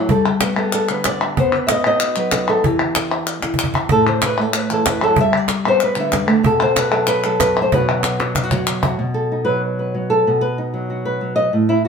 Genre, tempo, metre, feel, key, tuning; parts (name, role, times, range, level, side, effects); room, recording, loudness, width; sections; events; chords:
flamenco; 189 BPM; 4/4; straight; B phrygian dominant; A4 = 441 Hz
flamenco guitar; melody; 0.0-11.9 s; A2 to E5; -17 LUFS; equal
cajon; percussion; 0.1-8.9 s; -22 LUFS; right 2 dB
palmas hand claps; percussion; 0.3-9.0 s; -21 LUFS; left 3 dB
wet studio reverb, RT60 0.8 s; band playing live in one room; -15 LUFS; side -6 dB against mid
0.0-9.0 A section; 9.0-11.9 B section
drum fill 3.4-3.9, 8.2-9.0; nylon-string guitar solo 9.0-11.9
0.1 G; 1.4 B; 2.6 N.C.; 3.9 A5; 5.2 G; 6.4 B5; 7.7 B